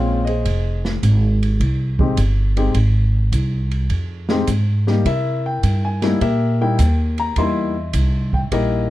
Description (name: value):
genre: jazz piano trio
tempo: 104 BPM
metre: 4/4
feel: swing 68% on 8ths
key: F minor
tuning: A4 = 440 Hz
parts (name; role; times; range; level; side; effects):
- warm grand piano; melody; 0.0-8.9 s; G3 to C6; -21 LUFS; left 3 dB; none
- upright bass; bass; 0.0-8.9 s; F1 to C3; -18 LUFS; equal; none
- open jazz drum kit; drums; 0.3-8.7 s; hi-hat, kick drum, ride cymbal, snare drum; -26 LUFS; right 2 dB; none
room: little or no reverb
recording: none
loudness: -16 LUFS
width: side -15 dB against mid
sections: 0.0-8.9 A section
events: none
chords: 0.5 Fm7; 5.1 C7#9